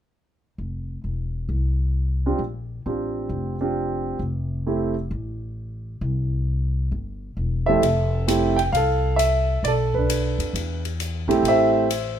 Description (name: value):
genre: jazz piano trio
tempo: 133 BPM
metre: 4/4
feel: swing 66% on 8ths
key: F major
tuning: A4 = 440 Hz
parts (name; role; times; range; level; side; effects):
- upright bass; bass; 0.6-12.2 s; E1 to F2; -25 LUFS; left 1 dB; none
- warm concert grand piano; melody; 2.3-4.9, 7.7-12.2 s; F2 to G5; -21 LUFS; right 2 dB; none
- open jazz drum kit; drums; 7.8-12.0 s; hi-hat, kick drum, ride cymbal; -31 LUFS; left 6 dB; none
room: light reverb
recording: minimal, uncompressed stereo recording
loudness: -21 LUFS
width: side -9 dB against mid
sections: 0.6-7.8 A section; 7.8-12.2 B section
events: none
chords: 0.6 F5; 2.4 Bb69; 4.2 F; 6.0 C; 7.8 Fmaj7; 9.6 Bm7; 10.5 Am7